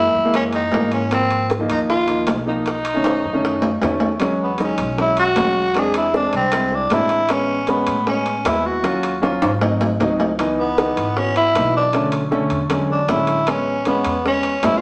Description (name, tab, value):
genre	Afro-Cuban jazz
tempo	155 BPM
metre	4/4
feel	straight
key	E major from 4.2 s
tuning	A4 = 440 Hz
part	growling tenor saxophone	melody	0.0-14.8 s	B3 to G#4	-22 LUFS	equal	none
part	warm grand piano	accompaniment	0.0-14.8 s	D3 to F#4	-23 LUFS	equal	none
part	upright bass	bass	0.0-14.8 s	G#1 to A2	-31 LUFS	equal	none
part	bongos	percussion	0.2-14.8 s	none	-27 LUFS	equal	none
part	timbales	percussion	0.3-14.8 s	none	-28 LUFS	equal	none
room	wet studio reverb, RT60 0.9 s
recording	none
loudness	-19 LUFS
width	mono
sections	0.0-4.2 A section; 4.2-14.8 B section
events	drum fill 3.1-4.2, 9.2-10.4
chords	0.0 Gb9; 1.1 Ab6; 2.7 B9; 4.2 E69; 5.8 Eaug7; 7.3 Amaj7; 8.8 D#m9; 9.6 G#7; 10.4 C#m9; 11.9 Bm7; 12.7 E13; 13.5 Amaj9